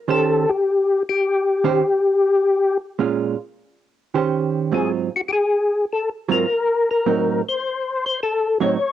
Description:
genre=jazz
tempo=104 BPM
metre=4/4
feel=swing 69% on 8ths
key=Eb mixolydian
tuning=A4 = 440 Hz
part: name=percussive tonewheel organ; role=melody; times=0.1-8.9 s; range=Gb4 to Db5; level=-18 LUFS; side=left 3 dB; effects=slow rotary speaker, chorus vibrato, cassette tape, plate reverb
part: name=vintage hollow-body jazz guitar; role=accompaniment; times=0.1-8.8 s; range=Ab2 to C5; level=-20 LUFS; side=right 7 dB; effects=cassette tape
room=wet booth ambience, RT60 0.2 s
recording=home recording on cassette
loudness=-18 LUFS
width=side -11 dB against mid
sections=0.0-8.9 A section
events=none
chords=0.1 Eb6; 2.4 Bbm7; 3.6 Eb6; 4.7 Ab13; 7.0 Adim7

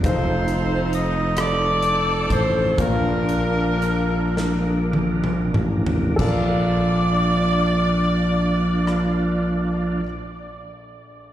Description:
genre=slow gospel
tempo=30-46 BPM (dotted quarters)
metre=6/8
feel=straight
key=Bb major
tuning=A4 = 439 Hz
part: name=warm grand piano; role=accompaniment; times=0.0-11.3 s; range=Bb1 to C5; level=-29 LUFS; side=left 2 dB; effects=slapback echo
part: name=bright tonewheel organ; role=sustained chords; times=0.0-10.0 s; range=F3 to Bb4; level=-28 LUFS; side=right 2 dB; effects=slow rotary speaker, overdrive, chorus vibrato
part: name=modern bright fingered electric bass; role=bass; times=0.0-10.0 s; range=F1 to Bb1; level=-22 LUFS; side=equal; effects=none
part: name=modern studio drum kit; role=drums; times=0.0-9.2 s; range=crash cymbal, hi-hat, kick drum, rim click, snare drum, toms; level=-27 LUFS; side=equal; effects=none
part: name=edgy saxophone section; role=melody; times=0.1-10.0 s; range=D4 to Eb5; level=-24 LUFS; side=equal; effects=slapback echo, tape echo
room=light reverb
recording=live gig heard through the venue's PA, recital hall reverb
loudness=-18 LUFS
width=side -12 dB against mid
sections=0.0-6.2 A section; 6.2-10.2 B section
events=slowing down 0.0-6.2; drum fill 4.4-6.2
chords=0.0 F7; 2.8 Bbmaj7

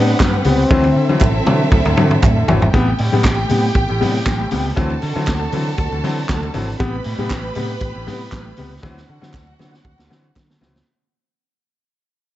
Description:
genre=disco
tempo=118 BPM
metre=4/4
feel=straight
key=unclear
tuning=A4 = 444 Hz
part: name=mellow trombone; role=melody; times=0.0-1.4 s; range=C4 to D4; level=-19 LUFS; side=left 2 dB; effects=none
part: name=warm studio violin section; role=second line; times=0.0-10.8 s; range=C4 to B5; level=-24 LUFS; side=right 1 dB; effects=none
part: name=bright grand piano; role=accompaniment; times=0.0-10.8 s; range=A2 to C4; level=-22 LUFS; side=left 3 dB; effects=none
part: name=clear studio string section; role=sustained chords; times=0.0-10.8 s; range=C3 to B4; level=-29 LUFS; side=right 1 dB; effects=none
part: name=fingered electric bass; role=bass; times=0.0-10.8 s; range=G#1 to D3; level=-20 LUFS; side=right 1 dB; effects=none
part: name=vintage drum kit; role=drums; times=0.2-10.9 s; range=handclaps, hi-hat, kick drum, snare drum, toms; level=-19 LUFS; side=right 1 dB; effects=none
part: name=congas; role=percussion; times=0.2-10.7 s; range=none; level=-28 LUFS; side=left 6 dB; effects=none
part: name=group handclap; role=percussion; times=0.2-10.5 s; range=none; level=-32 LUFS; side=right 4 dB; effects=none
room=light reverb, studio reverb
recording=dark, warm production, nothing above 7.9 kHz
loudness=-14 LUFS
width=side -14 dB against mid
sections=0.0-2.7 A section; 2.7-10.9 B section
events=drum fill 0.7-2.7, 8.8-10.9; fade-out 2.7-10.9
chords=0.0 Am9; 0.7 D9; 2.7 Am9; 4.8 D9; 6.8 Am9; 8.8 D9

